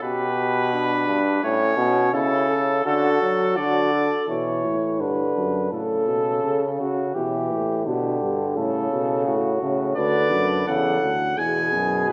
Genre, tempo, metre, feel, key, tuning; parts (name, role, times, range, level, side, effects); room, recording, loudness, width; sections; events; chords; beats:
classical, imitative canzona for brass ensemble; 85 BPM; 4/4; straight; A4 = 440 Hz
clear trumpet; melody; 0.0-4.3, 10.0-12.1 s; A4 to G#5; -26 LUFS; equal
mellow flugelhorn; second line; 0.0-12.1 s; C#4 to C#5; -28 LUFS; equal
clear euphonium; accompaniment; 0.0-12.1 s; G2 to F#3; -26 LUFS; equal
clear bass trombone; bass; 4.3-12.1 s; D2 to C#3; -29 LUFS; equal
wet recital hall reverb, RT60 1.5 s; -22 LUFS; mono
0.0-4.3 A section; 4.3-12.1 B section
0.0 G/B; 1.4 A; 2.8 D; 4.3 Bm; 5.7 A; 7.1 G; 8.6 F#m/A; 10.0 Bm/D; 11.4 E
0.02 0.72 | 1.43 2.13 2.85 3.56 | 4.28 5.00 5.71 6.43 | 7.14 7.85 8.56 9.26 | 9.96 10.67 11.38 12.10